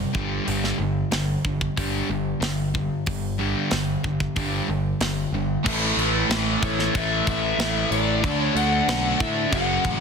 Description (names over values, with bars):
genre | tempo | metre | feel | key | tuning
hard rock | 93 BPM | 4/4 | straight | A mixolydian | A4 = 438 Hz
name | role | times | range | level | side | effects
sludgy distorted guitar | riff | 0.0-10.0 s | F#2 to D4 | -28 LUFS | left 12 dB | overdrive
sludgy distorted guitar | riff | 0.0-10.0 s | F#2 to D4 | -28 LUFS | right 13 dB | overdrive
picked electric bass | bass | 0.0-10.0 s | F#1 to A2 | -28 LUFS | equal | none
tight metal drum kit | drums | 0.1-10.0 s | crash cymbal, hi-hat, kick drum, snare drum | -26 LUFS | equal | soft clipping on kick
raw garage guitar | riff | 5.6-10.0 s | F#2 to D4 | -28 LUFS | equal | overdrive, phaser
overdriven tonewheel organ | sustained chords | 5.7-10.0 s | A3 to F#5 | -37 LUFS | equal | none
lead guitar through a small cranked amp | melody | 6.6-10.0 s | C#5 to F#5 | -26 LUFS | left 2 dB | overdrive, slapback echo
room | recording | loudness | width
light reverb | dense, heavily limited modern master | -21 LUFS | side -6 dB against mid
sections
0.0-5.7 A section; 5.7-10.0 B section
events
none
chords
0.2 G5; 5.7 A5; 8.2 D